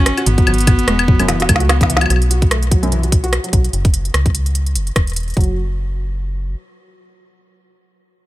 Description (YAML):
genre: IDM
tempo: 147 BPM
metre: 4/4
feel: swing 56% on 16ths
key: F# minor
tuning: A4 = 438 Hz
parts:
  - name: warm cello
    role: melody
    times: 0.0-2.1 s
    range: A3 to C#4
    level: -22 LUFS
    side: left 1 dB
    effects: digital delay
  - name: felt-muted upright piano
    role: arpeggios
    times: 0.0-5.6 s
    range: F#2 to F#4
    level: -22 LUFS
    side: right 1 dB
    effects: ping-pong delay
  - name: metallic FM bass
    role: bass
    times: 0.0-6.6 s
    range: E1 to C#2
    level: -18 LUFS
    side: equal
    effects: none
  - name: organic electronic drum kit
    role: drums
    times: 0.1-5.5 s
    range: hi-hat, rim click, snare drum, toms, woodblock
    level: -18 LUFS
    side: equal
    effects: small room ambience
  - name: electronic kick drum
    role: drums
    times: 0.4-5.5 s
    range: none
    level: -14 LUFS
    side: equal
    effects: small room ambience
room: little or no reverb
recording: none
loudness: -13 LUFS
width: side -16 dB against mid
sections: 0.0-2.1 A section; 2.1-5.4 B section; 5.4-8.3 C section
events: drum fill 1.3-2.1; filter sweep on FM bass 2.1-5.4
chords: 0.0 Eadd9/G#; 2.1 B5; 3.7 F#5; 5.4 N.C.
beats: 0.06 | 0.47 0.88 1.29 1.69 | 2.10 2.51 2.92 3.33 | 3.73 4.14 4.55 4.96 | 5.37 5.78 6.18